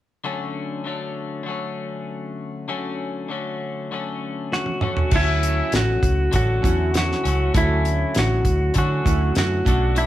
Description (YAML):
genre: indie pop, bedroom pop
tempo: 99 BPM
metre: 4/4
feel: straight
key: D major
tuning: A4 = 440 Hz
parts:
  - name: twelve-string electric guitar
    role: accompaniment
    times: 0.2-10.1 s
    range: B2 to D4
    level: -28 LUFS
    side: left 4 dB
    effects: warbly pitch drift
  - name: clean lap steel guitar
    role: melody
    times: 4.5-10.1 s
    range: E4 to F#4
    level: -23 LUFS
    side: equal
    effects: none
  - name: damped 70s drum kit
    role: drums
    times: 4.5-10.1 s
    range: crash cymbal, hi-hat, kick drum, snare drum, toms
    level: -22 LUFS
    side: equal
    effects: none
  - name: chorused retro synth keys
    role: accompaniment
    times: 5.1-10.1 s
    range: A3 to F#4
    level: -29 LUFS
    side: right 4 dB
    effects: none
  - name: vintage muted fingered electric bass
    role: bass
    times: 5.1-10.1 s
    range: A1 to D3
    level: -21 LUFS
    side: equal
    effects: none
room: moderate large studio reverb, RT60 0.9 s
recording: band playing live in one room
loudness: -20 LUFS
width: side -13 dB against mid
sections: 0.3-5.1 A section; 5.1-10.1 B section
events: drum fill 4.5-5.1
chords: 0.3 Dmaj7